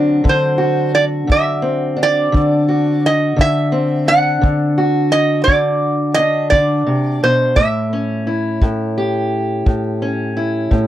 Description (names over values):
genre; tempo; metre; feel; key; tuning
acoustic country blues, solo or duo; 57 BPM (dotted quarters); 12/8; straight; unclear; A4 = 440 Hz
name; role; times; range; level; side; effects
fingerpicked steel-string acoustic guitar; accompaniment; 0.0-10.9 s; A2 to G4; -16 LUFS; left 1 dB; none
kick drum; drums; 0.2-10.9 s; none; -14 LUFS; equal; none
metal-body resonator slide guitar; melody; 0.3-8.6 s; C5 to F#5; -16 LUFS; right 2 dB; none
room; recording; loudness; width
little or no reverb; dry, close 1970s-style studio recording; -13 LUFS; side -12 dB against mid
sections
0.0-10.9 A section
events
none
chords
0.0 D7; 7.6 A7